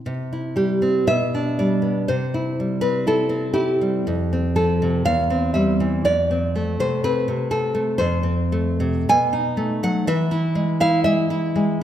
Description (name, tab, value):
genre	romantic piece for solo classical guitar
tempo	60 BPM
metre	2/4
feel	rubato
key	C major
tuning	A4 = 436 Hz
part	nylon-string guitar	solo	0.1-11.8 s	E2 to G#5	-18 LUFS	equal	slapback echo
room	moderate concert hall reverb, RT60 1.8 s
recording	none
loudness	-18 LUFS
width	side -10 dB against mid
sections	0.1-11.8 A section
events	none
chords	0.1 C; 1.1 G/B; 2.1 C; 4.0 F; 5.0 C/E; 6.0 F; 9.1 B7; 10.1 E